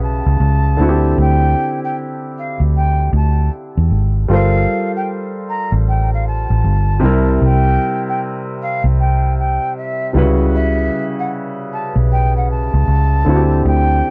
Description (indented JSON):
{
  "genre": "lo-fi hip hop",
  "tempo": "77 BPM",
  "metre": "4/4",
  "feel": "swing 64% on 16ths",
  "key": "G dorian",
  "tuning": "A4 = 437 Hz",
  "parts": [
    { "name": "mellow jazz flute", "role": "melody", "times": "0.0-14.1 s", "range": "E5 to Bb5", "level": "-24 LUFS", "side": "equal", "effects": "low-pass filter, analog delay" },
    { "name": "warm upright piano", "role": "accompaniment", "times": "0.0-14.1 s", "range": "C3 to C5", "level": "-22 LUFS", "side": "equal", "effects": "low-pass filter" },
    { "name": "vintage muted fingered electric bass", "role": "bass", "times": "0.0-14.0 s", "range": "G1 to E2", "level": "-16 LUFS", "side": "equal", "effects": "none" }
  ],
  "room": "little or no reverb",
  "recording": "dry, gritty hardware recording, transformer saturation",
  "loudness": "-16 LUFS",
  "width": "mono",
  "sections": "0.0-14.1 A section",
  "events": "none",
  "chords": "0.0 A13; 0.8 D9sus4; 4.3 Gm11; 7.0 C7; 10.1 A13/C#; 13.3 D9sus4"
}